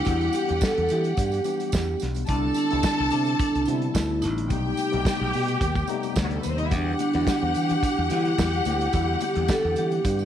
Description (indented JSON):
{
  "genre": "disco",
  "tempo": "108 BPM",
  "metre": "4/4",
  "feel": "straight",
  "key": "E minor",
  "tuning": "A4 = 440 Hz",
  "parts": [
    { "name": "vibraphone with medium hard mallets", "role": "melody", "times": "0.0-10.2 s", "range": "D4 to A4", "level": "-26 LUFS", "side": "right 2 dB", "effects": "none" },
    { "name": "clear studio string section", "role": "second line", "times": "0.0-10.2 s", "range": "F#3 to A5", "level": "-28 LUFS", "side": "left 1 dB", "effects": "none" },
    { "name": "tine electric piano", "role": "accompaniment", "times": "0.0-10.2 s", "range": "C3 to G4", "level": "-32 LUFS", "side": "left 11 dB", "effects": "overdrive, fast stereo tremolo" },
    { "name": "modern bright fingered electric bass", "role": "bass", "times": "0.1-10.2 s", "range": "A1 to E3", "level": "-27 LUFS", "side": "right 1 dB", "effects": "none" },
    { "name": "warm soul drum kit", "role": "drums", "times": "0.1-10.2 s", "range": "hi-hat, kick drum, snare drum", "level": "-27 LUFS", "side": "right 1 dB", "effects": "none" },
    { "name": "tambourine", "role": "percussion", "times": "0.1-10.2 s", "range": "none", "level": "-42 LUFS", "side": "right 12 dB", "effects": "none" },
    { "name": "congas", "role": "percussion", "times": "6.7-9.6 s", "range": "none", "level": "-36 LUFS", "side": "left 11 dB", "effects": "none" }
  ],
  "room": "light reverb, studio ambience",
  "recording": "1960s-style stereo with parts hard left and right",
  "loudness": "-22 LUFS",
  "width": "side -10 dB against mid",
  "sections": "0.0-10.2 A section",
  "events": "none",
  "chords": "0.0 Em9; 2.3 Cmaj9; 4.5 B7b9b13; 6.7 Em9"
}